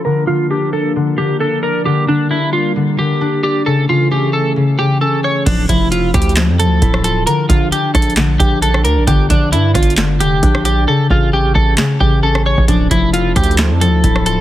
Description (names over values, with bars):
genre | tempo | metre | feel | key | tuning
hip hop, trap | 133 BPM | 4/4 | half-time | D harmonic minor | A4 = 442 Hz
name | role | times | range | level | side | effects
electric guitar at the edge of break-up | melody | 0.0-14.4 s | D4 to C#5 | -17 LUFS | right 1 dB | analog chorus, low-pass filter
concert harp | accompaniment | 0.0-14.4 s | C#3 to D5 | -17 LUFS | left 3 dB | low-pass filter
hollow soft pad | sustained chords | 0.0-5.4, 12.7-14.4 s | E3 to Bb4 | -23 LUFS | right 2 dB | chorus, low-pass filter
hard-hitting 808-style bass | bass | 5.5-14.4 s | D1 to G2 | -15 LUFS | right 1 dB | none
booming analog drum machine | drums | 5.5-14.4 s | crash cymbal, handclaps, hi-hat, kick drum, rim click, snare drum | -15 LUFS | right 1 dB | overdrive
room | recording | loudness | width
digital ambience | heavily compressed radio sound | -11 LUFS | side -13 dB against mid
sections
0.0-5.5 A section; 5.5-14.4 B section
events
filter sweep 0.0-5.5; hi-hats muted 10.9-12.7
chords
0.1 Bb; 1.9 Gm; 3.7 A; 5.5 Dmadd9; 7.3 Bb; 9.1 Gm; 10.9 A; 12.7 Dmadd9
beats
| 0.05 0.50 0.95 1.41 | 1.86 2.31 2.76 3.21 | 3.66 4.11 4.56 5.01 | 5.47 5.92 6.37 6.82 | 7.27 7.72 8.17 8.62 | 9.07 9.53 9.98 10.43 | 10.88 11.33 11.78 12.23 | 12.68 13.13 13.59 14.04